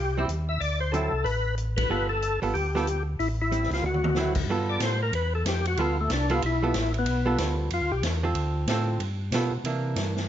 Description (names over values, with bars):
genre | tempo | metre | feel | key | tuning
soul jazz organ trio | 186 BPM | 4/4 | swing 62% on 8ths | G mixolydian | A4 = 438 Hz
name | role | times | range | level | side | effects
percussive tonewheel organ | melody | 0.0-8.0 s | A3 to E5 | -28 LUFS | left 2 dB | slow rotary speaker, overdrive, chorus vibrato
mellow tonewheel organ | bass | 0.0-10.3 s | G1 to C3 | -28 LUFS | equal | overdrive, chorus vibrato, slow rotary speaker
archtop guitar, miked and amplified | accompaniment | 0.2-10.3 s | D3 to A4 | -30 LUFS | right 4 dB | none
swinging big-band drum kit | drums | 0.3-10.2 s | crash cymbal, hi-hat, kick drum, ride cymbal, snare drum, toms | -33 LUFS | equal | none
room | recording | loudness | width
moderate large studio reverb, RT60 1.1 s | nothing above 7.6 kHz | -24 LUFS | side -10 dB against mid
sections
0.0-4.5 A section; 4.5-10.3 B section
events
band accent 1.7; drum fill 3.8-4.2; tonewheel organ solo 4.5-10.3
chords
0.0 Am7 (rootless); 0.6 D9; 1.9 G9; 3.2 Am7; 3.8 D9; 4.5 G9; 8.4 Dm7; 9.0 G9; 9.6 C9